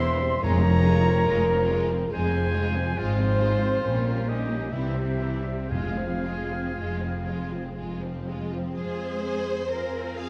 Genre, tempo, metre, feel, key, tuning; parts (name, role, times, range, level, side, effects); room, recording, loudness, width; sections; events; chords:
classical, slow romantic movement for symphony orchestra; 55-73 BPM; 3/4; rubato; F minor; A4 = 440 Hz
warm symphonic violin section; melody; 0.0-10.3 s; C4 to F5; -38 LUFS; equal
clear clarinet; second line; 0.0-7.7 s; C5 to C6; -36 LUFS; equal
clear oboe; second line; 0.0-7.8 s; F4 to E5; -38 LUFS; equal
mellow small flute group; second line; 0.0-7.7 s; C5 to C6; -36 LUFS; equal
rich symphonic violin section; second line; 0.0-10.3 s; G3 to Ab4; -43 LUFS; equal
warm symphonic viola section; accompaniment; 0.0-10.3 s; E3 to F4; -38 LUFS; equal
dark French horn section; sustained chords; 0.0-10.3 s; Ab3 to C5; -33 LUFS; equal
dark symphonic cello section; bass; 0.0-10.3 s; E2 to Bb4; -32 LUFS; equal
rich studio double bass section; bass; 0.0-10.3 s; E1 to F2; -32 LUFS; equal
timpani; percussion; 0.4-1.7, 5.7-7.2 s; F2; -32 LUFS; equal
moderate scoring stage reverb, RT60 1.5 s; dark, warm production; -26 LUFS; mono
0.0-8.8 A section; 8.8-10.3 B section
0.4 Fm; 3.0 Fm/Ab; 3.8 Gdim/Bb; 4.7 C; 5.7 Fm